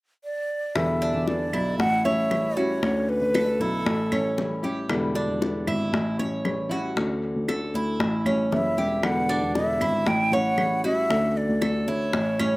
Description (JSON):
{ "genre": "latin, Cuban son and guajira", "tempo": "116 BPM", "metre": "4/4", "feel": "straight", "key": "D major", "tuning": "A4 = 440 Hz", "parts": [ { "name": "breathy hollow jazz flute", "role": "melody", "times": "0.2-4.6, 8.5-12.6 s", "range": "A4 to G5", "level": "-26 LUFS", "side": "equal", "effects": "none" }, { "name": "nylon-string guitar", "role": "accompaniment", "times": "0.7-12.6 s", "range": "B2 to F#4", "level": "-30 LUFS", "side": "left 2 dB", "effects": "none" }, { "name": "dark baby grand piano", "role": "bass", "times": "0.8-12.6 s", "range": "E1 to E2", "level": "-27 LUFS", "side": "equal", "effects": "none" }, { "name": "bongos", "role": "percussion", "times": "0.8-12.6 s", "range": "none", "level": "-32 LUFS", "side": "left 3 dB", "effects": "none" }, { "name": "claves", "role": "percussion", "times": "0.8-12.6 s", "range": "none", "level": "-34 LUFS", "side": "right 2 dB", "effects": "none" }, { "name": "Cuban tres", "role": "arpeggios", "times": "1.0-12.6 s", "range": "C#4 to C#5", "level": "-29 LUFS", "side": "right 2 dB", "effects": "none" } ], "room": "little or no reverb", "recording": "recorded outdoors, with no room sound", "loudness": "-22 LUFS", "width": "side -20 dB against mid", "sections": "0.8-12.6 A section", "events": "none", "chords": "0.0 N.C.; 0.8 Em7; 1.8 A7; 2.8 Dmaj7; 3.9 A7; 4.9 Em7; 5.9 A7; 7.0 Dmaj7; 8.0 A7; 9.0 Em7; 10.1 A7; 11.1 Dmaj7" }